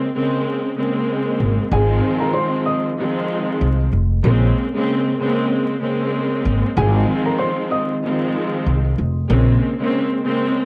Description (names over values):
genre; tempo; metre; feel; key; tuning
hip hop, boom-bap hip-hop; 95 BPM; 4/4; swing 58% on 16ths; unclear; A4 = 440 Hz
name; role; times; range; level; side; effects
warm studio string section; accompaniment; 0.0-10.7 s; Db3 to C4; -22 LUFS; equal; cassette tape, high-pass filter, low-pass filter
upright bass; bass; 1.4-9.6 s; F1 to C2; -19 LUFS; equal; tube saturation
dark upright piano; melody; 1.7-8.8 s; Ab4 to Eb6; -26 LUFS; equal; high-pass filter, low-pass filter, tape echo
room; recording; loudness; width
light reverb; home recording on cassette, vinyl crackle; -19 LUFS; mono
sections
0.0-1.7 A section; 1.7-10.7 B section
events
none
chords
0.0 Bbm9; 1.7 Ab6; 4.2 Bbm9; 6.8 Ab6; 9.3 Bbm9